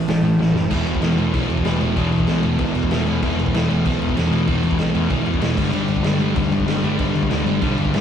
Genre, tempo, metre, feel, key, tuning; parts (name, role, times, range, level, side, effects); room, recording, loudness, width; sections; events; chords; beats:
punk rock; 191 BPM; 4/4; straight; A4 = 440 Hz
fuzz guitar; riff; 0.0-8.0 s; E2 to A3; -29 LUFS; equal; distortion
sludgy distorted guitar; riff; 0.0-8.0 s; E2 to G3; -23 LUFS; left 6 dB; overdrive
sludgy distorted guitar; riff; 0.0-8.0 s; E2 to G3; -22 LUFS; right 3 dB; overdrive
overdriven picked electric bass; bass; 0.0-8.0 s; E1 to D2; -24 LUFS; left 1 dB
raw garage drum kit; drums; 0.1-8.0 s; crash cymbal, hi-hat, kick drum, snare drum; -23 LUFS; equal
light reverb; rough rehearsal-room recording; -17 LUFS; side -8 dB against mid
0.7-8.0 A section
drum fill 0.4-0.7
0.0 A5; 0.7 E5; 5.6 G5
0.09 0.40 | 0.72 1.03 1.35 1.66 | 1.98 2.29 2.61 2.92 | 3.23 3.55 3.86 4.18 | 4.49 4.81 5.12 5.43 | 5.75 6.06 6.37 6.68 | 7.00 7.31 7.62 7.93